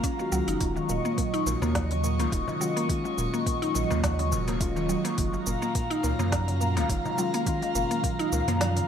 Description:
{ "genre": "organic downtempo", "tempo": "105 BPM", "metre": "4/4", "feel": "swing 55% on 16ths", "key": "Eb minor", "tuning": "A4 = 440 Hz", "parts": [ { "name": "muted felt-like synth keys", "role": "accompaniment", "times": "0.0-8.9 s", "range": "Eb3 to Gb4", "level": "-32 LUFS", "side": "left 3 dB", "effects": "chorus, sidechain pumping, ping-pong delay" }, { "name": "airy breathy pad", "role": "sustained chords", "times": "0.0-8.9 s", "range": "Gb3 to Db6", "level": "-30 LUFS", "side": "right 1 dB", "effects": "chorus, phaser, sidechain pumping" }, { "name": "mallet-like synth pluck", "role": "arpeggios", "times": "0.0-8.9 s", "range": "Bb2 to Eb4", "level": "-31 LUFS", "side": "equal", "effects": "analog chorus, ping-pong delay" }, { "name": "electronic kick drum", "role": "drums", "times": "0.0-8.2 s", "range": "none", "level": "-30 LUFS", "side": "equal", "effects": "overdrive" }, { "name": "organic electronic drum kit", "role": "drums", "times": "0.0-8.9 s", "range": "cabasa, hi-hat, snare drum", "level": "-34 LUFS", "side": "right 1 dB", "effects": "overdrive" }, { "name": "warm sub bass", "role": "bass", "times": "0.3-8.8 s", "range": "Eb1 to Gb2", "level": "-29 LUFS", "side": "equal", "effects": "none" }, { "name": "darbuka", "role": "percussion", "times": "0.8-8.9 s", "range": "none", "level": "-39 LUFS", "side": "left 2 dB", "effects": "none" } ], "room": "light reverb", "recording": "none", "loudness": "-24 LUFS", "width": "side -8 dB against mid", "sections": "0.0-8.9 A section", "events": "kick drops out 8.6", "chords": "0.0 Gbmaj7; 0.6 Ebm7; 5.2 Gbmaj7", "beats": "0.04 | 0.61 1.18 1.75 2.32 | 2.89 3.47 4.04 4.61 | 5.18 5.75 6.32 6.89 | 7.47 8.04 8.61" }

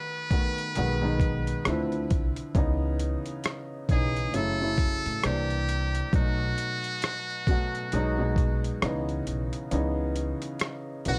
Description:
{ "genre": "lo-fi hip hop", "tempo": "67 BPM", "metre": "4/4", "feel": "swing 59% on 16ths", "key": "C# minor", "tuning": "A4 = 436 Hz", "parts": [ { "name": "trumpet with metal mute", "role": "melody", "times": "0.0-11.2 s", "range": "F#4 to B4", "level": "-35 LUFS", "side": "equal", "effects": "none" }, { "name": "dark upright piano", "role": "accompaniment", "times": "0.0-11.2 s", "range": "B2 to F#4", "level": "-33 LUFS", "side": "equal", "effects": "plate reverb" }, { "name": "boom bap sampler-style drum kit", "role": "drums", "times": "0.3-11.2 s", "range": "hi-hat, kick drum, rim click", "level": "-30 LUFS", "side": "equal", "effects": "none" }, { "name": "upright bass", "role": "bass", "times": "0.8-11.2 s", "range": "F#1 to D2", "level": "-33 LUFS", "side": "equal", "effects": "none" } ], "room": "light reverb", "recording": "cassette tape", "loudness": "-28 LUFS", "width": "mono", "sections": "0.0-9.7 A section; 9.7-11.2 A section", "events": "kick muted 9.7-11.2", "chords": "0.0 B7; 0.8 G#m7/B; 1.7 Dm9; 2.5 C#m9; 4.3 F#m7; 5.2 C9; 6.1 B7; 7.9 G#m7/B; 8.8 C#m9", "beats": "0.76 1.65 | 2.55 3.44 4.34 5.24 | 6.13 7.03 7.92 8.82 | 9.71 10.61" }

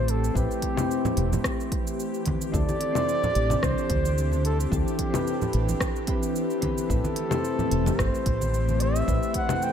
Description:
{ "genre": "sunset chillout", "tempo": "110 BPM", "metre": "4/4", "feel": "swing 54% on 16ths", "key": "A minor", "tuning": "A4 = 440 Hz", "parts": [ { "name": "trumpet with bucket mute", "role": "melody", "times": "0.0-9.7 s", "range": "G4 to G5", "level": "-30 LUFS", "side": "right 1 dB", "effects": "diffuse ambient delay, shimmer reverb" }, { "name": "soft electric-piano-like synth keys", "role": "accompaniment", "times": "0.0-9.7 s", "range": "C4 to C5", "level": "-31 LUFS", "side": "moving between left 5 dB and right 2 dB", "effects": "chorus, auto-pan, ping-pong delay, shimmer reverb" }, { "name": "airy breathy pad", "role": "sustained chords", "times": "0.0-9.7 s", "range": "E3 to A4", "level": "-31 LUFS", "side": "left 2 dB", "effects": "chorus, shimmer reverb" }, { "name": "mellow fretless electric bass", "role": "bass", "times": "0.0-9.2 s", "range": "E1 to D2", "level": "-25 LUFS", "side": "equal", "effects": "tube saturation, wide subtle chorus" }, { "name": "deep house drum kit", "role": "drums", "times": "0.1-9.7 s", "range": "congas, hi-hat, rim click, shaker", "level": "-31 LUFS", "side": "left 2 dB", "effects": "none" }, { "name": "electronic kick drum", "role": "drums", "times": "0.4-9.5 s", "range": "none", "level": "-29 LUFS", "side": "equal", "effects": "none" }, { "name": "congas", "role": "percussion", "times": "1.1-8.8 s", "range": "none", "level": "-32 LUFS", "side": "right 2 dB", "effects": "none" } ], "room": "moderate plate reverb, RT60 1.2 s, digital ambience", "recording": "dreamy mix soaked in reverb", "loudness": "-23 LUFS", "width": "side -8 dB against mid", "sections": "0.0-9.7 A section", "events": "none", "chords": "0.0 Am7; 2.5 D9sus4; 6.9 Am7", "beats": "| 0.35 0.90 1.44 1.99 | 2.54 3.08 3.62 4.17 | 4.72 5.26 5.81 6.35 | 6.90 7.44 7.99 8.54 | 9.08 9.62" }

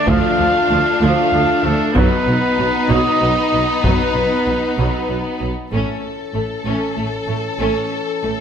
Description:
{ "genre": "cinematic, epic orchestral film score", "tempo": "64 BPM (dotted quarters)", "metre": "6/8", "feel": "straight", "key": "A lydian", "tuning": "A4 = 441 Hz", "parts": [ { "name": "warm symphonic violin section", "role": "melody", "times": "0.0-8.4 s", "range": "D4 to A4", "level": "-23 LUFS", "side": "left 4 dB", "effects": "none" }, { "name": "warm symphonic violin section", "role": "second line", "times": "0.0-8.3 s", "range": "A3 to C#4", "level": "-25 LUFS", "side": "left 3 dB", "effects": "none" }, { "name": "dark French horn section", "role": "sustained chords", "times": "0.0-8.4 s", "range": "E3 to F4", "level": "-24 LUFS", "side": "left 3 dB", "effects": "none" }, { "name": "warm trumpet section", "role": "stabs", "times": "0.0-5.4 s", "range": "A4 to F5", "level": "-19 LUFS", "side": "right 2 dB", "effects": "none" }, { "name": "dark symphonic viola section", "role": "accompaniment", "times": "0.1-8.3 s", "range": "F3 to A3", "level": "-26 LUFS", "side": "right 3 dB", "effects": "none" }, { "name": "dark symphonic cello section", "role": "bass", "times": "0.1-8.3 s", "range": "D2 to B2", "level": "-24 LUFS", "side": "right 2 dB", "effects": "none" }, { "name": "mellow tuba", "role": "bass", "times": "0.1-5.5 s", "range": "B1 to D2", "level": "-25 LUFS", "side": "right 3 dB", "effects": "none" }, { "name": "warm symphonic double bass section", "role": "bass", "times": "0.1-8.3 s", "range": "A1 to D2", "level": "-26 LUFS", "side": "right 2 dB", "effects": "none" }, { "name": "solo taiko drums", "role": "drums", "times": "0.1-6.9 s", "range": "none", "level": "-21 LUFS", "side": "equal", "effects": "none" } ], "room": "moderate scoring stage reverb, RT60 1.6 s", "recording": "none", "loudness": "-15 LUFS", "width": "side -8 dB against mid", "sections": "0.0-5.7 A section; 5.7-8.4 B section", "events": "none", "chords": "0.0 Dm; 2.0 B; 5.7 A", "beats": "| 0.08 1.02 | 1.96 2.90 | 3.84 4.78 | 5.72 6.67 | 7.61" }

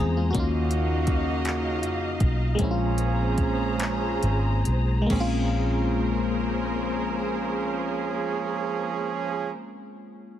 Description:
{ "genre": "slow six-eight R&B", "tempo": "44-55 BPM (dotted quarters)", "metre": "6/8", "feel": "straight", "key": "Bb minor", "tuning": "A4 = 438 Hz", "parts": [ { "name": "FM electric piano", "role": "accompaniment", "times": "0.0-10.4 s", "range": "Ab3 to Ab4", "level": "-29 LUFS", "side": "left 3 dB", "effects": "chorus, phaser" }, { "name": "muted studio string section", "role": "sustained chords", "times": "0.0-9.5 s", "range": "Bb3 to Bb5", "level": "-33 LUFS", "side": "equal", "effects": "none" }, { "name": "vintage muted fingered electric bass", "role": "bass", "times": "0.0-9.5 s", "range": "Ab1 to F2", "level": "-26 LUFS", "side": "equal", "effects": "none" }, { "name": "warm horn section", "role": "stabs", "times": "0.3-9.5 s", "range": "Db3 to Ab4", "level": "-31 LUFS", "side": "right 7 dB", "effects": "none" }, { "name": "smooth R&B drum kit", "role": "drums", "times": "0.3-5.3 s", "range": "crash cymbal, handclaps, hi-hat, kick drum", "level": "-29 LUFS", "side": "equal", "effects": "none" } ], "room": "light reverb", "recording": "dense, heavily limited modern master", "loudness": "-23 LUFS", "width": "side -11 dB against mid", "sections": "0.0-5.1 A section; 5.1-10.4 B section", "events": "slowing down 0.3-5.1", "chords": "0.3 Ebm9; 2.6 Bbm9", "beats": "| 0.35 1.45 | 2.59 3.80 | 5.10 6.47 | 7.83 9.19" }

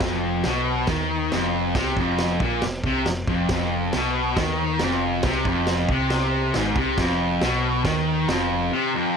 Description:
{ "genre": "garage rock duo or trio", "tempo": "138 BPM", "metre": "4/4", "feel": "straight", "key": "unclear", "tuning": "A4 = 442 Hz", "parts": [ { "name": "fuzz guitar", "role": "riff", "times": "0.0-9.2 s", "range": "F2 to Eb3", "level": "-22 LUFS", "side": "left 1 dB", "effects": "distortion" }, { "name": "hollow-body short-scale fingered electric bass", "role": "bass", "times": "0.0-8.7 s", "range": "F1 to Eb2", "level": "-29 LUFS", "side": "equal", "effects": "none" }, { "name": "vintage drum kit", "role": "drums", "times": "0.0-8.4 s", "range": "crash cymbal, kick drum, snare drum", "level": "-28 LUFS", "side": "right 1 dB", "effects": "none" } ], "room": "light reverb", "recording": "none", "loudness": "-20 LUFS", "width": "side -6 dB against mid", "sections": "0.0-9.2 A section", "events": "none", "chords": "0.0 F5", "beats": "| 0.01 0.45 0.89 1.32 | 1.76 2.19 2.63 3.06 | 3.50 3.93 4.37 4.80 | 5.24 5.67 6.11 6.54 | 6.98 7.41 7.85 8.28 | 8.71 9.14" }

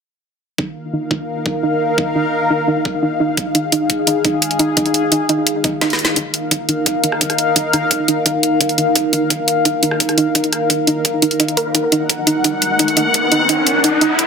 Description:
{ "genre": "dark technical drum and bass", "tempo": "172 BPM", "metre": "4/4", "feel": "straight", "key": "Eb minor", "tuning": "A4 = 439 Hz", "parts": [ { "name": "sweeping resonant pad", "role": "sustained chords", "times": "0.6-14.3 s", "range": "Eb4 to Gb5", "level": "-18 LUFS", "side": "left 1 dB", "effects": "chorus, sidechain pumping" }, { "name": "soft round pluck", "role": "arpeggios", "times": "0.6-14.1 s", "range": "Eb4 to Bb4", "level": "-19 LUFS", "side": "right 1 dB", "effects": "chorus, sidechain pumping, ping-pong delay" }, { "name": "electronic kick drum", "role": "drums", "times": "0.6-14.3 s", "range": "none", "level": "-22 LUFS", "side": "left 1 dB", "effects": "overdrive, high-pass filter on kick, high-pass filter on room" }, { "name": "drum and bass drum kit", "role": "drums", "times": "3.4-14.3 s", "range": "hi-hat, rim click, snare drum", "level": "-16 LUFS", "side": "right 1 dB", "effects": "high-pass filter on hats, high-pass filter on snare, high-pass filter on room" }, { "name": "riser", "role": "sound effects", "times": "12.2-14.3 s", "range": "none", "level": "-20 LUFS", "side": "equal", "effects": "none" } ], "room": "moderate digital room reverb, RT60 1.3 s", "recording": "dense, heavily limited modern master, high-pass filter", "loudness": "-14 LUFS", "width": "side -6 dB against mid", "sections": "0.6-6.2 A section; 6.2-14.3 B section", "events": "filter sweep on synth pluck 0.6-6.2, 6.2-14.3; drum fill 5.8-6.2, 11.7-14.3; build-up 6.2-14.3; riser 12.2-14.3", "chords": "0.6 Eb5", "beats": "| 0.58 0.93 1.28 1.63 | 1.98 2.33 2.68 3.02 | 3.37 3.72 4.07 4.42 | 4.77 5.12 5.47 5.82 | 6.17 6.51 6.86 7.21 | 7.56 7.91 8.26 8.61 | 8.96 9.30 9.65 10.00 | 10.35 10.70 11.05 11.40 | 11.75 12.10 12.44 12.79 | 13.14 13.49 13.84 14.19" }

